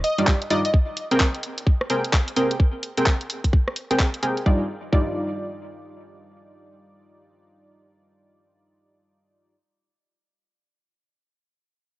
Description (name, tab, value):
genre	UK garage, two-step garage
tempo	129 BPM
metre	4/4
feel	swing 62% on 16ths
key	Eb major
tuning	A4 = 440 Hz
part	plucky unison lead	melody	0.0-0.7 s	Eb5	-27 LUFS	equal	cassette tape, analog delay
part	garage drum kit	drums	0.0-4.4 s	handclaps, hi-hat, rim click	-25 LUFS	equal	overdrive, cassette tape
part	punchy chord stab	stabs	0.2-9.6 s	G3 to G5	-24 LUFS	equal	chorus, cassette tape, analog delay
part	electronic kick drum	drums	0.3-5.1 s	none	-19 LUFS	equal	cassette tape
room	light reverb, digital ambience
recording	home recording on cassette, nothing above 7.9 kHz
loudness	-20 LUFS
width	side -18 dB against mid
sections	0.0-4.5 A section; 4.5-8.2 B section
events	none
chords	0.0 Ebmaj9; 0.7 Abmaj9; 4.5 Ebmaj9